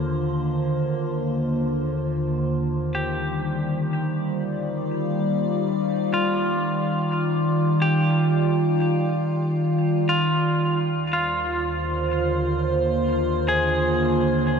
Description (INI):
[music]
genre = ambient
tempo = free time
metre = none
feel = none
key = Eb major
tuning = A4 = 441 Hz
[part]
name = evolving wavetable pad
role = sustained chords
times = 0.0-14.6 s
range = Eb2 to D5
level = -21 LUFS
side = equal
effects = chorus, built-in reverb, phaser
[part]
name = clean electric guitar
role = arpeggios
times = 2.9-14.6 s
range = F4 to Ab4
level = -27 LUFS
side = equal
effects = warbly pitch drift, tape echo
[sound]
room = wet cathedral reverb, RT60 6.0 s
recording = dark, warm production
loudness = -20 LUFS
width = side -6 dB against mid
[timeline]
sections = 0.0-14.6 A section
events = none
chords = 0.0 Bbadd9/Eb; 2.5 Ebmaj9; 10.3 Bbadd9/Eb